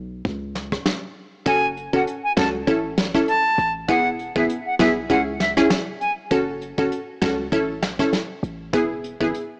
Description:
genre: dancehall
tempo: 99 BPM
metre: 4/4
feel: swing 56% on 16ths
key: E major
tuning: A4 = 440 Hz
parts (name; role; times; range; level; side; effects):
- warm 808-style bass; bass; 0.0-9.3 s; E1 to C#2; -34 LUFS; equal; none
- soft brush drum kit; drums; 0.2-9.5 s; hi-hat, kick drum, rim click, snare drum; -28 LUFS; equal; none
- bright reedy silver concert flute; melody; 1.5-6.1 s; E5 to A5; -24 LUFS; equal; analog delay
- wavetable chord stab; accompaniment; 1.5-9.4 s; B3 to A4; -24 LUFS; equal; sidechain pumping
room: light reverb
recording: dry, gritty hardware recording, cassette tape, small speaker sound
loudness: -22 LUFS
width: mono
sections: 0.0-9.6 A section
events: break 0.0-1.5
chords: 0.3 N.C.; 1.5 F#m; 2.7 A; 3.9 E; 5.1 C#m; 6.3 F#m; 7.5 A; 8.7 E

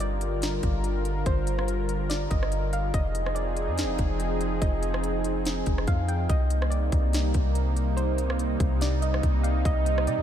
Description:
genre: hip hop, atmospheric cloud-rap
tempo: 143 BPM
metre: 4/4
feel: half-time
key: C minor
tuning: A4 = 441 Hz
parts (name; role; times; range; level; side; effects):
- soft round pluck; melody; 0.0-10.2 s; C5 to G5; -33 LUFS; right 1 dB; chorus, analog delay
- warm analog pad; sustained chords; 0.0-10.2 s; C3 to Bb4; -30 LUFS; right 1 dB; chorus, sidechain pumping
- soft 808-style bass; bass; 0.0-10.2 s; F1 to C3; -27 LUFS; equal; none
- trap drum kit; drums; 0.0-10.2 s; hi-hat, kick drum, rim click, snare drum; -30 LUFS; equal; none
room: light reverb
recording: none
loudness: -24 LUFS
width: side -10 dB against mid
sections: 0.0-6.3 A section; 6.3-10.2 B section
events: none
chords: 0.0 Gm7; 2.9 Fm7; 6.3 Cm7

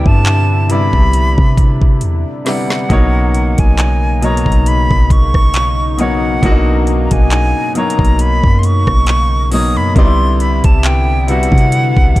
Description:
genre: contemporary R&B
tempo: 68 BPM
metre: 4/4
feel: swing 54% on 16ths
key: B major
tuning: A4 = 440 Hz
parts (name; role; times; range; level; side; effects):
- breathy bright silver concert flute; melody; 0.0-12.2 s; F#5 to D#6; -18 LUFS; equal; tape echo
- clear grand piano; accompaniment; 0.0-12.2 s; B2 to D5; -18 LUFS; left 1 dB; none
- chorused pulse-width pad; sustained chords; 0.0-12.2 s; C#3 to E4; -23 LUFS; left 1 dB; none
- clean 808-style bass; bass; 0.0-12.2 s; B1 to C3; -14 LUFS; equal; none
- smooth R&B drum kit; drums; 0.1-12.2 s; handclaps, hi-hat, kick drum, rim click, snare drum; -13 LUFS; equal; none
room: digital ambience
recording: dark, warm production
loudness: -10 LUFS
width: side -17 dB against mid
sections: 0.0-12.2 A section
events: drum fill 2.0-2.9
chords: 0.0 Cmaj9; 2.9 Bmaj9; 10.0 Cmaj9

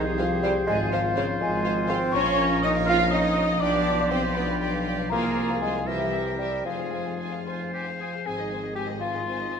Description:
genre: cinematic, playful, whimsical film cue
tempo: 80 BPM (dotted quarters)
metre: 6/8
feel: straight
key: F minor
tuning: A4 = 439 Hz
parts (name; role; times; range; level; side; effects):
- celesta; melody; 0.0-9.6 s; Db5 to F6; -33 LUFS; left 7 dB; none
- bright clarinet; second line; 0.0-9.6 s; F4 to C5; -35 LUFS; left 2 dB; none
- clear oboe; second line; 0.0-8.1 s; F4 to C5; -34 LUFS; right 1 dB; none
- mellow bassoon; accompaniment; 0.0-7.5 s; Db3 to F4; -28 LUFS; right 3 dB; none
- warm studio viola section; accompaniment; 0.0-9.6 s; C4 to F5; -33 LUFS; right 3 dB; none
- warm French horn section; sustained chords; 0.0-7.8 s; B3 to Ab4; -33 LUFS; left 4 dB; none
- concert harp; arpeggios; 0.0-9.6 s; F2 to C6; -33 LUFS; left 5 dB; none
- rich studio cello section; bass; 0.0-9.6 s; Ab2 to F4; -33 LUFS; right 2 dB; none
- warm studio double bass section; bass; 0.0-9.6 s; Ab1 to F2; -36 LUFS; right 3 dB; none
- warm tuba; bass; 0.0-9.6 s; F1 to C2; -34 LUFS; right 3 dB; none
- warm studio violin section; melody; 0.2-9.6 s; Db5 to Ab5; -37 LUFS; left 4 dB; none
- flute section; second line; 0.2-7.4 s; Db5 to F6; -33 LUFS; left 3 dB; none
- rich studio violin section; second line; 0.2-9.6 s; Db4 to E5; -36 LUFS; left 4 dB; none
room: wet recital hall reverb, RT60 1.5 s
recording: minimal, uncompressed stereo recording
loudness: -23 LUFS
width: side -6 dB against mid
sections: 0.0-8.3 A section; 8.3-9.6 B section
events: none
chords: 0.0 Fm; 0.7 Fm/Ab; 2.1 Bbm; 3.6 G7/B; 5.1 Fm/C; 5.9 C7; 6.7 Fm; 8.3 Ab

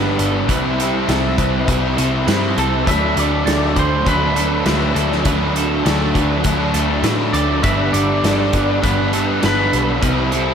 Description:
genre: rock, shoegaze and dream pop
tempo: 101 BPM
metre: 4/4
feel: straight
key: D mixolydian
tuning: A4 = 440 Hz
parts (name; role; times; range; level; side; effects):
- twelve-string electric guitar; arpeggios; 0.0-10.5 s; A4 to B5; -27 LUFS; right 5 dB; lush chorus, tape echo
- biting overdriven guitar; riff; 0.0-10.5 s; G2 to E4; -20 LUFS; left 7 dB; lush chorus
- overdriven semi-hollow guitar; riff; 0.0-10.5 s; G2 to E4; -20 LUFS; right 6 dB; reverse reverb
- vintage muted picked electric bass; bass; 0.0-10.5 s; G1 to A2; -21 LUFS; left 1 dB; none
- loose indie drum kit; drums; 0.2-10.5 s; hi-hat, kick drum, snare drum; -23 LUFS; equal; none
- lightly driven lead guitar; melody; 2.6-9.9 s; A4 to E5; -22 LUFS; right 1 dB; lush chorus, tape echo
room: wet lush hall reverb, RT60 1.8 s, studio reverb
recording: dreamy mix soaked in reverb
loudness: -14 LUFS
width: side -7 dB against mid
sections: 0.0-10.5 A section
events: none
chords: 0.5 C; 2.9 D6; 7.6 G; 10.0 C

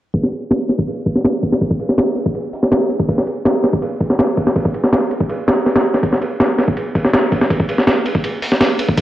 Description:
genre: drum and bass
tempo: 163 BPM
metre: 4/4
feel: straight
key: none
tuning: none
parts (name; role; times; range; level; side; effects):
- breakbeat sampler-style drum kit; drums; 0.1-9.0 s; hi-hat, kick drum, ride cymbal, snare drum; -14 LUFS; equal; high-pass filter on kick, studio reverb, high-pass filter on cymbals, high-pass filter on snare, high-pass filter on hats
room: wet lush hall reverb, RT60 1.9 s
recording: dark, warm production, vinyl crackle, low-pass filter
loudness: -14 LUFS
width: side -14 dB against mid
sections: 0.1-9.0 A section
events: filter sweep 0.1-9.0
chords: none

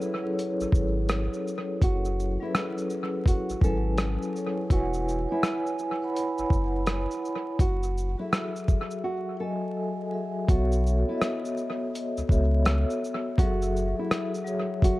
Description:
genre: lo-fi hip hop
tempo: 83 BPM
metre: 4/4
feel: swing 65% on 16ths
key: F# minor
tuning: A4 = 440 Hz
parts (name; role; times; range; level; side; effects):
- vibraphone with soft mallets; accompaniment; 0.0-15.0 s; F#3 to B5; -29 LUFS; equal; cassette tape, analog delay
- dusty soul sampler-style drum kit; drums; 0.0-15.0 s; hi-hat, kick drum, rim click, shaker; -26 LUFS; equal; analog delay
- warm sub bass; bass; 0.6-13.9 s; E1 to C#2; -27 LUFS; equal; none
- nylon-string guitar; melody; 1.8-15.0 s; E4 to A4; -33 LUFS; right 1 dB; analog delay
room: light reverb, digital ambience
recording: echo-heavy mix, vinyl crackle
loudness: -25 LUFS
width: side -18 dB against mid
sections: 0.0-10.5 A section; 10.5-15.0 B section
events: break 9.0-10.5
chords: 0.0 F#m11; 4.7 E6; 7.6 F#m7; 10.5 B9sus4; 13.4 F#m9

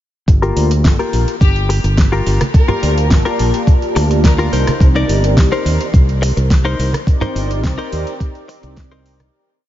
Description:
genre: nu-disco, nu disco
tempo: 106 BPM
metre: 4/4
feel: straight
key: G minor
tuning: A4 = 441 Hz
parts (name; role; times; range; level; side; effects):
- warm analog pad; accompaniment; 0.3-9.3 s; Bb3 to A5; -22 LUFS; equal; wide subtle chorus, cassette tape, ping-pong delay
- fingered electric bass; bass; 0.3-9.3 s; G1 to Eb2; -16 LUFS; equal; none
- electronic kick drum; drums; 0.3-8.9 s; none; -11 LUFS; equal; studio reverb
- pop drum kit; drums; 0.3-9.3 s; hi-hat, rim click, snare drum; -22 LUFS; equal; studio reverb
- direct-recorded clean electric guitar; riff; 0.4-9.2 s; Eb4 to D5; -21 LUFS; left 4 dB; analog chorus, low-pass filter, ping-pong delay
- rich studio violin section; melody; 1.4-4.5 s; G4 to Bb4; -27 LUFS; left 2 dB; analog delay
- congas; percussion; 2.4-9.3 s; none; -21 LUFS; right 2 dB; none
room: light reverb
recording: nothing above 7.5 kHz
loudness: -12 LUFS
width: side -13 dB against mid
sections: 0.3-9.3 groove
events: filter sweep on clean electric guitar 0.3-9.3; filter sweep on analog synth pad 0.3-9.3; fade-out 6.3-9.3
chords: 0.3 Gm7; 4.5 Cm7

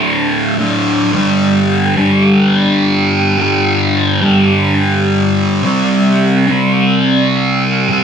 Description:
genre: rock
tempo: 106 BPM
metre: 4/4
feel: straight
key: unclear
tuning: A4 = 440 Hz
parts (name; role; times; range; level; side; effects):
- thick fuzz guitar; solo; 0.0-8.0 s; D2 to C4; -10 LUFS; equal; distortion, phaser
room: moderate studio ambience, RT60 0.5 s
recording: band playing live in one room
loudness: -10 LUFS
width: side -7 dB against mid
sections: 0.0-1.1 A section; 1.1-8.0 B section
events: none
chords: 0.0 D5; 1.1 G5; 5.6 C5

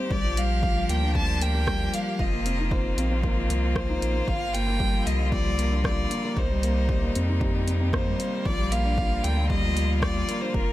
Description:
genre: piano and strings electronica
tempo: 115 BPM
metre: 4/4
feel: straight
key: unclear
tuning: A4 = 439 Hz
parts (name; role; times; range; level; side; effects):
- rich violin; melody; 0.0-10.7 s; Bb4 to A5; -31 LUFS; equal; digital delay
- bright string quartet; sustained chords; 0.0-10.7 s; C3 to G4; -34 LUFS; left 1 dB; sidechain pumping
- felt-muted upright piano; riff; 0.0-10.7 s; F3 to G4; -30 LUFS; left 1 dB; digital delay
- warm sub bass; bass; 0.1-10.7 s; F1 to F2; -26 LUFS; equal; sidechain pumping
- electronic kick drum; drums; 0.1-10.6 s; none; -28 LUFS; equal; none
- deep house drum kit; drums; 0.4-10.4 s; hi-hat, rim click; -32 LUFS; equal; none
room: small room ambience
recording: none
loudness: -22 LUFS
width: side -15 dB against mid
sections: 0.0-10.7 A section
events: none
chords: 0.1 Bb6; 2.2 F7sus4; 4.3 Gm7; 6.4 Cm7; 8.5 Bb6

